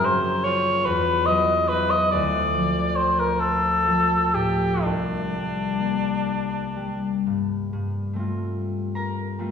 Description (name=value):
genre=classical, impressionist duo for cor anglais and harp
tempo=40-50 BPM (dotted quarters)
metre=6/8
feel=rubato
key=G minor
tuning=A4 = 445 Hz
part: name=mellow cor anglais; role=melody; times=0.0-7.3 s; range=D4 to Eb5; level=-22 LUFS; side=left 1 dB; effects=none
part: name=concert harp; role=accompaniment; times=0.0-9.5 s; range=F#1 to Bb5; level=-25 LUFS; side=left 1 dB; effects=none
room=wet scoring stage reverb, RT60 1.7 s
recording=heard from further back in the room, small room ambience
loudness=-21 LUFS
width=side -7 dB against mid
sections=0.0-7.7 A section; 7.7-9.5 B section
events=none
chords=0.0 F#5; 0.9 Esus2; 2.1 Dm9; 4.8 C9; 7.7 Gm11